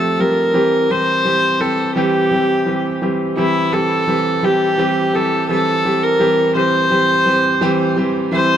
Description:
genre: pop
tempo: 85 BPM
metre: 4/4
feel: straight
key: unclear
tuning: A4 = 440 Hz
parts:
  - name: rich viola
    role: melody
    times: 0.0-8.6 s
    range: E4 to C5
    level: -16 LUFS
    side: equal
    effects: none
  - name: warm concert grand piano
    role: accompaniment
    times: 0.0-8.6 s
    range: E3 to G4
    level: -17 LUFS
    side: right 1 dB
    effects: none
room: moderate lush hall reverb, RT60 2.6 s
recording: none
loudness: -14 LUFS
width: side -9 dB against mid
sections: 0.0-8.6 A section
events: none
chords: 0.0 Fadd9; 0.6 C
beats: | 0.55 1.26 1.96 2.67 | 3.38 4.08 4.79 5.49 | 6.20 6.91 7.61 8.32

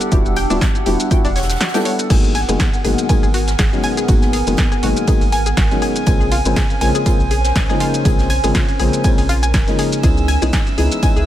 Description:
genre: deep house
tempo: 121 BPM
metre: 4/4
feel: swing 55% on 16ths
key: G# minor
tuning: A4 = 440 Hz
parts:
  - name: deep dark ambient pad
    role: sustained chords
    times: 0.0-11.3 s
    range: B3 to G#5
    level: -27 LUFS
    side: right 1 dB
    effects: chorus, built-in reverb, sidechain pumping
  - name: felt-muted upright piano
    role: stabs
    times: 0.0-11.2 s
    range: B2 to A4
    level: -20 LUFS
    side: left 2 dB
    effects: sidechain pumping, digital delay
  - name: punchy analog drum machine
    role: drums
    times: 0.0-11.3 s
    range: crash cymbal, hi-hat, ride cymbal, shaker, snare drum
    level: -24 LUFS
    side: equal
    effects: none
  - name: warbly tape-like pad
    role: texture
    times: 0.0-11.3 s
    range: B3 to E6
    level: -27 LUFS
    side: right 1 dB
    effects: chorus, built-in reverb, sidechain pumping
  - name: analog pluck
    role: arpeggios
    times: 0.1-11.2 s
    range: D4 to G#5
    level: -25 LUFS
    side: left 3 dB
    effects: chorus, sidechain pumping, dub echo
  - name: round analog bass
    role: bass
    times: 0.1-11.3 s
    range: D1 to C#2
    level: -19 LUFS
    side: equal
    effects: sidechain pumping
  - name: electronic kick drum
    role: drums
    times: 0.1-11.1 s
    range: none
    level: -16 LUFS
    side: equal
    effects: none
  - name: unplugged drum kit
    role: drums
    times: 0.1-11.2 s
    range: hi-hat, snare drum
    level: -33 LUFS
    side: right 4 dB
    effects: sidechain pumping on hats, high-pass filter on hats, high-pass filter on snare, high-pass filter on room
  - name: rich chamber violin section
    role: texture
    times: 2.1-11.3 s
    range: G#5 to E6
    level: -29 LUFS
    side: right 4 dB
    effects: sidechain pumping
room: small room reverb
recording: none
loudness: -13 LUFS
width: side -12 dB against mid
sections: 0.0-11.3 A section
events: none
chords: 0.0 Em9; 2.1 G#m9; 6.1 A#m9; 10.0 C#m9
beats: | 0.12 0.61 1.11 1.60 | 2.10 2.60 3.09 3.59 | 4.08 4.58 5.08 5.57 | 6.07 6.56 7.06 7.56 | 8.05 8.55 9.04 9.54 | 10.04 10.53 11.03

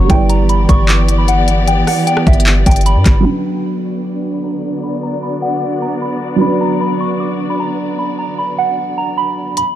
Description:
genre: hip hop, trap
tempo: 152 BPM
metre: 4/4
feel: half-time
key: B harmonic minor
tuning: A4 = 439 Hz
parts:
  - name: soft synth bell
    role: melody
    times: 0.0-9.7 s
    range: E5 to D6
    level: -19 LUFS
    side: equal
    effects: chorus, phaser, low-pass filter, ping-pong delay
  - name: felt-muted upright piano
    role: accompaniment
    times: 0.0-9.6 s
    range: F#3 to D5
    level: -19 LUFS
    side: right 3 dB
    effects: low-pass filter
  - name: dark symphonic string section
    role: sustained chords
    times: 0.0-9.5 s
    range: D3 to D5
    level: -21 LUFS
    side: left 1 dB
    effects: low-pass filter
  - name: hard-hitting 808-style bass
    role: bass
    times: 0.0-3.2 s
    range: G1 to G2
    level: -13 LUFS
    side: equal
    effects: none
  - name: trap drum kit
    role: drums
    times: 0.1-3.1, 9.6-9.7 s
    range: handclaps, hi-hat, kick drum, rim click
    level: -13 LUFS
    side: equal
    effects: none
room: little or no reverb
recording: dark, warm production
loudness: -12 LUFS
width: side -12 dB against mid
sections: 0.0-3.3 A section; 3.3-9.6 B section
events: filter sweep 3.3-9.6; kick muted 9.6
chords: 0.1 G6; 3.3 Bm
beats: | 0.10 0.49 0.89 1.28 | 1.68 2.07 2.46 2.86 | 3.25 3.65 4.04 4.44 | 4.83 5.23 5.62 6.02 | 6.41 6.81 7.20 7.60 | 7.99 8.39 8.78 9.18 | 9.57

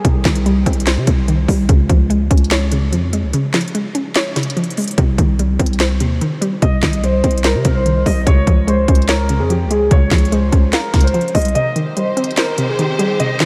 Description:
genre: hip hop, trap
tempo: 146 BPM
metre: 4/4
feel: half-time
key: C phrygian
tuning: A4 = 439 Hz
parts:
  - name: hollow square pluck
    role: accompaniment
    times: 0.0-13.5 s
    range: C3 to F5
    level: -22 LUFS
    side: equal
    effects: chorus, low-pass filter
  - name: growling 808-style bass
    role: bass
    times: 0.0-11.5 s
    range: C2 to C3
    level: -19 LUFS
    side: equal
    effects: none
  - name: trap drum kit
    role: drums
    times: 0.0-13.5 s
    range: handclaps, hi-hat, kick drum, snare drum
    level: -19 LUFS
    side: equal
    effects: none
  - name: dark baby grand piano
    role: melody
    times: 6.6-13.5 s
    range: G4 to Eb5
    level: -22 LUFS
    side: equal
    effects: lush chorus, low-pass filter, tape echo
  - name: rich studio string section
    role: sustained chords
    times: 11.6-13.5 s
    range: Eb3 to C5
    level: -26 LUFS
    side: equal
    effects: none
room: moderate huge ambient reverb, RT60 4.7 s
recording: dreamy mix soaked in reverb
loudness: -15 LUFS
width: mono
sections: 0.0-13.5 A section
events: break 0.0-6.6; kick muted 11.6-13.5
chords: 0.0 Cm; 1.7 Db; 5.0 Cm; 8.3 Db; 11.6 Cm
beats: | 0.05 0.46 0.87 1.28 | 1.69 2.10 2.51 2.92 | 3.33 3.75 4.16 4.57 | 4.98 5.39 5.80 6.21 | 6.62 7.03 7.44 7.86 | 8.27 8.68 9.09 9.50 | 9.91 10.32 10.73 11.14 | 11.55 11.96 12.38 12.79 | 13.20

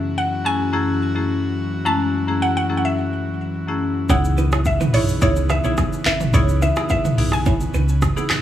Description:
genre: afrobeats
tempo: 107 BPM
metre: 4/4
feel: straight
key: C# minor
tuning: A4 = 441 Hz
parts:
  - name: mallet-like synth pluck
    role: melody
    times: 0.0-8.3 s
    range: C#5 to A5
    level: -24 LUFS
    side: equal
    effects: chorus, digital delay
  - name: marimba with medium hard mallets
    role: accompaniment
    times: 0.0-8.3 s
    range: F#2 to G#4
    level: -22 LUFS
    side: left 3 dB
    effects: none
  - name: airy breathy pad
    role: sustained chords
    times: 0.0-8.4 s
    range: C#3 to F#4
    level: -29 LUFS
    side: right 2 dB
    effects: chorus, sidechain pumping
  - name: clean electric guitar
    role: riff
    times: 4.1-8.2 s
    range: B3 to C#5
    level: -28 LUFS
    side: right 8 dB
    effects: digital delay
  - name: hollow-body short-scale picked electric bass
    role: bass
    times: 4.1-8.1 s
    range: G#1 to C#2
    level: -20 LUFS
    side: equal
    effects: none
  - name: deep house drum kit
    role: drums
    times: 4.1-8.4 s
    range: handclaps, hi-hat, kick drum, rim click, shaker, toms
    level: -20 LUFS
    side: right 1 dB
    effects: none
  - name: congas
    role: percussion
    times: 4.1-8.4 s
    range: none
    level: -30 LUFS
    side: right 2 dB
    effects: none
room: light reverb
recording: none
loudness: -17 LUFS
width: side -11 dB against mid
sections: 0.0-8.4 A section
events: none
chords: 0.0 F#m7; 4.1 C#m7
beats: 0.17 0.73 1.29 | 1.85 2.42 2.98 3.54 | 4.10 4.66 5.22 5.78 | 6.34 6.90 7.46 8.02

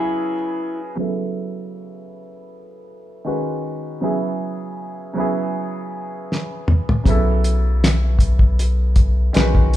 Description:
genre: R&B, neo-soul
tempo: 79 BPM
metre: 4/4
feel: swing 56% on 16ths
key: unclear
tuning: A4 = 440 Hz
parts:
  - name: electric guitar through a small old amp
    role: second line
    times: 0.0-0.8 s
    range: E4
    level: -23 LUFS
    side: left 1 dB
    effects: none
  - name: clear concert grand piano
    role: accompaniment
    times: 0.0-9.8 s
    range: C#3 to B4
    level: -24 LUFS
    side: right 1 dB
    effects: low-pass filter
  - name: cloth-damped thuddy drum kit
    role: drums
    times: 6.3-9.8 s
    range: finger snaps, hi-hat, kick drum, snare drum, toms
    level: -17 LUFS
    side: equal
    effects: none
  - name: round analog bass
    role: bass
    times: 7.1-9.8 s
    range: B1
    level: -17 LUFS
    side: equal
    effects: none
room: moderate large studio reverb, RT60 1.1 s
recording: band playing live in one room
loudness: -17 LUFS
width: side -14 dB against mid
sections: 1.0-9.8 A section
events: break 0.0-1.0; filter sweep on grand piano 1.0-9.8; drum fill 6.3-7.1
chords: 0.0 C#m7; 1.0 B5; 3.3 Badd9; 4.0 C#m7; 7.1 B5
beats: 0.22 | 0.98 1.74 2.50 3.26 | 4.02 4.78 5.54 6.30 | 7.06 7.82 8.57 9.33

